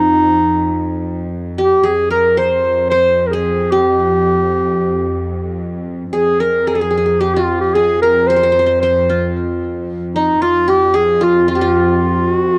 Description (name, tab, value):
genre	Turkish makam ensemble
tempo	112 BPM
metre	4/4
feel	straight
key	F makam huseyni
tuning	A4 = 440 Hz
part	warm clarinet	melody	0.0-12.6 s	Eb4 to C5	-16 LUFS	equal	none
part	qanun	second line	0.0-12.6 s	Eb4 to C5	-22 LUFS	equal	none
part	warm symphonic cello section	drone	0.0-12.6 s	F2	-23 LUFS	equal	none
room	studio reverb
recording	dry, close 1970s-style studio recording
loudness	-15 LUFS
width	mono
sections	0.0-12.6 A section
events	none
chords	none